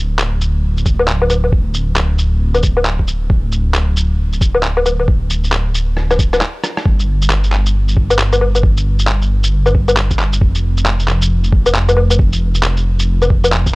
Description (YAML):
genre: future garage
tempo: 135 BPM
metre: 4/4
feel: swing 62% on 16ths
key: D minor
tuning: A4 = 439 Hz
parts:
  - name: dark detuned saw bass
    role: bass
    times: 0.0-13.8 s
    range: D1 to G1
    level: -15 LUFS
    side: equal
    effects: sidechain pumping
  - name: electronic handclaps, shaker, woodblock and rim click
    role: drums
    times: 0.2-13.7 s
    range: none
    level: -16 LUFS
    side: left 1 dB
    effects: none
  - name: electronic kick drum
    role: drums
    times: 0.9-13.7 s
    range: none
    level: -13 LUFS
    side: equal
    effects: none
room: little or no reverb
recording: dry, gritty hardware recording, transformer saturation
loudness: -12 LUFS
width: side -24 dB against mid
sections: 0.0-6.9 A section; 6.9-13.8 B section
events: drum fill 6.0-6.9; break 6.4-6.9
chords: none